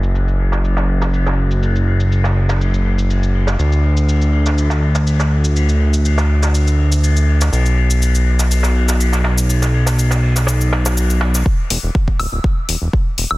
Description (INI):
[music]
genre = progressive house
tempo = 122 BPM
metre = 4/4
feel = straight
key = unclear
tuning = A4 = 439 Hz
[part]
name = fat analog bass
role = bass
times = 0.0-13.4 s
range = D1 to D2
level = -14 LUFS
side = equal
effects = sidechain pumping
[part]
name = electronic cabasa, hi-hat and woodblock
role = drums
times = 0.0-13.4 s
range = none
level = -25 LUFS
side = left 2 dB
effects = overdrive, sidechain pumping on perc, low-pass filter on perc, sidechain pumping on hats, low-pass filter on hats
[part]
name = vintage brush drum kit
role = drums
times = 0.1-11.5 s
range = hi-hat, ride cymbal, snare drum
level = -24 LUFS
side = left 1 dB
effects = high-pass filter on cymbals, low-pass filter on cymbals, high-pass filter on hats, low-pass filter on hats, soft clipping on snare, high-pass filter on snare, low-pass filter on snare, high-pass filter on room, low-pass filter on room
[part]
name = electronic kick drum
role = drums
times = 11.5-13.0 s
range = none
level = -16 LUFS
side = equal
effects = none
[sound]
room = small room ambience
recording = dense, heavily limited modern master, low-pass filter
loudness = -13 LUFS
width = side -19 dB against mid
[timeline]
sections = 0.0-11.5 A section; 11.5-13.4 B section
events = filter sweep 0.0-11.5; build-up 11.5-13.4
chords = none